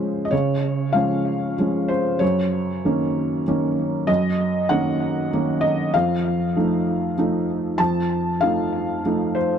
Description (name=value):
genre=neoclassical minimalist piano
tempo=96 BPM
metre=3/4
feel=rubato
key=unclear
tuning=A4 = 440 Hz
part: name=felt-muted upright piano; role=solo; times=0.0-9.6 s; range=F2 to A5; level=-19 LUFS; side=equal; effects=tape echo
room=light reverb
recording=dark, warm production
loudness=-19 LUFS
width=side -8 dB against mid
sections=0.0-9.6 A section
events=none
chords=0.0 Dbmaj7; 2.2 Gb6; 5.9 F7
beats=| 0.32 0.94 1.58 | 2.21 2.84 3.46 | 4.08 4.70 5.32 | 5.93 6.55 7.17 | 7.79 8.41 9.05